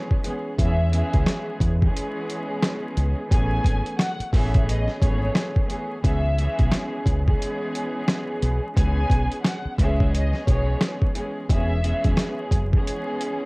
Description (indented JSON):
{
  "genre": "hip hop, boom-bap hip-hop",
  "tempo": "88 BPM",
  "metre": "4/4",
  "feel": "swing 60% on 16ths",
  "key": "C# minor",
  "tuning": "A4 = 444 Hz",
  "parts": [
    { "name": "dark studio violin section", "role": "melody", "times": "0.0-12.3 s", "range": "C#5 to G#5", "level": "-31 LUFS", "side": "equal", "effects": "high-pass filter, low-pass filter, cassette tape" },
    { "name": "warm studio string section", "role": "accompaniment", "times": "0.0-13.5 s", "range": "E3 to G#4", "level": "-28 LUFS", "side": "equal", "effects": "cassette tape, high-pass filter, low-pass filter" },
    { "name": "boom bap sampler-style drum kit", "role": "drums", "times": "0.1-13.4 s", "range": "hi-hat, kick drum, rim click, snare drum", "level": "-22 LUFS", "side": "equal", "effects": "none" },
    { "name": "deep dub fingered electric bass", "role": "bass", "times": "0.6-12.8 s", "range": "E1 to E2", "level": "-23 LUFS", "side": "equal", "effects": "none" }
  ],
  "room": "small room ambience",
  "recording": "home recording on cassette, vinyl crackle",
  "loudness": "-20 LUFS",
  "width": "side -27 dB against mid",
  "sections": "0.0-13.5 A section",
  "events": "none",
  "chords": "0.0 C#m7; 0.6 E6; 3.3 Amaj9; 6.0 C#m7; 11.5 E6"
}